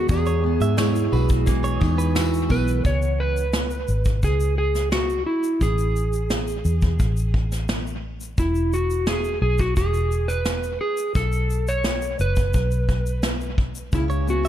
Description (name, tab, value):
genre	acoustic pop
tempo	87 BPM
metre	4/4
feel	straight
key	E major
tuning	A4 = 440 Hz
part	electric slide guitar	melody	0.0-14.5 s	E4 to C#5	-25 LUFS	right 1 dB	analog delay
part	fingerpicked steel-string acoustic guitar	accompaniment	0.0-3.4, 13.9-14.5 s	E2 to G#4	-27 LUFS	left 1 dB	double-tracked left and right
part	vintage muted fingered electric bass	bass	0.0-14.5 s	E1 to G#2	-23 LUFS	equal	none
part	soft brush drum kit	drums	0.1-14.5 s	kick drum, shaker, snare drum	-25 LUFS	equal	none
part	tambourine	percussion	0.1-2.7 s	none	-43 LUFS	left 4 dB	analog delay
part	direct-recorded clean electric guitar	arpeggios	0.3-2.3, 14.1-14.5 s	B4 to E5	-32 LUFS	right 5 dB	analog delay
part	vibraphone with medium mallets	second line	0.8-2.8 s	D#4 to E4	-28 LUFS	right 6 dB	none
room	small room ambience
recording	echo-heavy mix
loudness	-20 LUFS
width	side -11 dB against mid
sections	0.0-2.9 A section; 2.9-14.5 B section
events	none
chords	0.1 Eadd9; 2.9 C#5; 5.6 A5; 8.4 E5; 11.2 B5; 13.9 C#m7